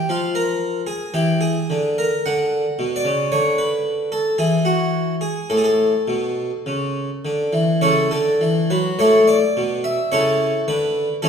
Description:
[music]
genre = classical, baroque-style suite movement for harpsichord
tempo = 51-58 BPM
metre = 3/4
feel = rubato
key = A major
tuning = A4 = 439 Hz
[part]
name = harpsichord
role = solo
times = 0.0-11.3 s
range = A2 to F#5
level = -17 LUFS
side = equal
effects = none
[sound]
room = wet recital hall reverb, RT60 1.4 s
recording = heard from further back in the room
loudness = -17 LUFS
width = side -7 dB against mid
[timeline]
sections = 0.0-9.0 A section; 9.0-11.3 B section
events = none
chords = 0.0 Bb7#11; 2.3 D; 3.3 N.C.; 5.5 A

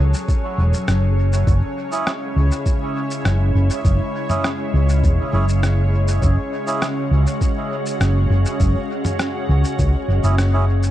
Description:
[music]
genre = ambient dub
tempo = 101 BPM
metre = 4/4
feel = straight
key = unclear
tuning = A4 = 440 Hz
[part]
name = soft additive organ-like pad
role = sustained chords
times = 0.0-10.9 s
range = C#3 to A4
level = -24 LUFS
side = equal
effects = ensemble chorus, built-in reverb, vintage 12-bit sampler grit
[part]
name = hollow-body short-scale fingered electric bass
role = bass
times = 0.0-10.9 s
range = E1 to C#2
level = -16 LUFS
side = equal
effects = tube saturation
[part]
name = bubbling stepped-filter texture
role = texture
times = 0.0-10.9 s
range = C#5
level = -32 LUFS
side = equal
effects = chorus, built-in reverb
[part]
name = lo-fi sampler-style drum kit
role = drums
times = 0.1-10.9 s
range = rim click, shaker, toms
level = -27 LUFS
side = equal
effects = overdrive, dub echo
[part]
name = electronic kick drum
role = drums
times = 0.3-9.9 s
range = none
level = -19 LUFS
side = equal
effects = none
[part]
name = melodica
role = stabs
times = 1.9-10.7 s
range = C#4 to G#4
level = -28 LUFS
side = right 3 dB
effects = dub echo
[sound]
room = little or no reverb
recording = dark, warm production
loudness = -16 LUFS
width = side -13 dB against mid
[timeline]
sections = 0.0-10.9 A section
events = band accent 10.4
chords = 0.0 F#m; 1.5 C#m

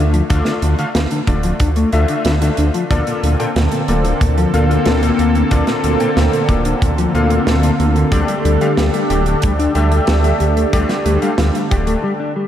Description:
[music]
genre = synthwave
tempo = 92 BPM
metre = 4/4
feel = straight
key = unclear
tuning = A4 = 445 Hz
[part]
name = bright electric grand piano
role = stabs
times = 0.0-12.0 s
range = D3 to G5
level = -21 LUFS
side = left 2 dB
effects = ensemble chorus, tape echo
[part]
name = wide detuned saw bass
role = bass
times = 0.0-12.0 s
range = D1 to D2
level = -16 LUFS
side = equal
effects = chorus
[part]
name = mellow electric guitar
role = riff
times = 0.1-12.5 s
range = Bb2 to G4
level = -22 LUFS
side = left 2 dB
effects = analog chorus, diffuse ambient delay
[part]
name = tight metal drum kit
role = drums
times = 0.1-12.0 s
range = hi-hat, snare drum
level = -23 LUFS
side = right 1 dB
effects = none
[part]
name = kick drum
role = drums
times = 0.3-11.8 s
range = none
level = -18 LUFS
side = equal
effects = none
[part]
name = phased analog pad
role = sustained chords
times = 3.3-12.0 s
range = D3 to A4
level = -18 LUFS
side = equal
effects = phaser, chorus, sidechain pumping
[sound]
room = moderate lush hall reverb, RT60 2.2 s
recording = dreamy mix soaked in reverb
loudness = -13 LUFS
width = side -10 dB against mid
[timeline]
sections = 0.0-12.5 A section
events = break 12.0-12.5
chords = 0.0 Dm; 2.9 Bbmaj7/D; 8.1 Gsus2/D

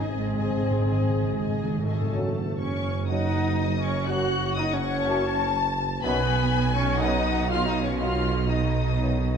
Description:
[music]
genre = cinematic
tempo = 122 BPM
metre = 4/4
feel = straight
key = unclear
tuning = A4 = 444 Hz
[part]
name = warm symphonic violin section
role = melody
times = 0.0-9.4 s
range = Ab5 to Gb6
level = -35 LUFS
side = left 5 dB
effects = none
[part]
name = warm symphonic violin section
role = second line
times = 0.0-9.4 s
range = Ab4 to A5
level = -32 LUFS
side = left 5 dB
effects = none
[part]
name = warm chamber viola section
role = accompaniment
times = 0.0-9.4 s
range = A3 to Ab4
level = -30 LUFS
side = equal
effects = none
[part]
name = mellow French horn section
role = sustained chords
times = 0.0-9.2 s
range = Cb4 to Gb4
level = -33 LUFS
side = left 2 dB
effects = none
[part]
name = rich symphonic cello section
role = bass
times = 0.0-9.4 s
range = Gb2 to Cb3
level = -32 LUFS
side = right 3 dB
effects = none
[part]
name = rich symphonic double bass section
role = bass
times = 0.0-9.4 s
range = Gb1 to Cb2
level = -30 LUFS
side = right 3 dB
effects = none
[part]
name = timpani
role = percussion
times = 0.0-2.1 s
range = Ab2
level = -28 LUFS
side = equal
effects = none
[part]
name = hollow concert flute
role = second line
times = 1.9-9.4 s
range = A4 to Gb5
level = -33 LUFS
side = left 4 dB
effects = none
[part]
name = dark trombone section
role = sustained chords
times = 2.1-9.2 s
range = Gb2 to Gb3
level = -35 LUFS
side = equal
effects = none
[part]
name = mellow tuba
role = bass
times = 2.1-9.4 s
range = Gb1 to Cb2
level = -32 LUFS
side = right 3 dB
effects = none
[sound]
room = wet scoring stage reverb, RT60 1.6 s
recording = dark, warm production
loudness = -22 LUFS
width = side -7 dB against mid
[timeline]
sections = 0.0-2.1 A section; 2.1-9.4 A section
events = timpani fill 0.0-2.1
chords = 0.0 Ab; 2.1 Gbm; 6.0 Cb

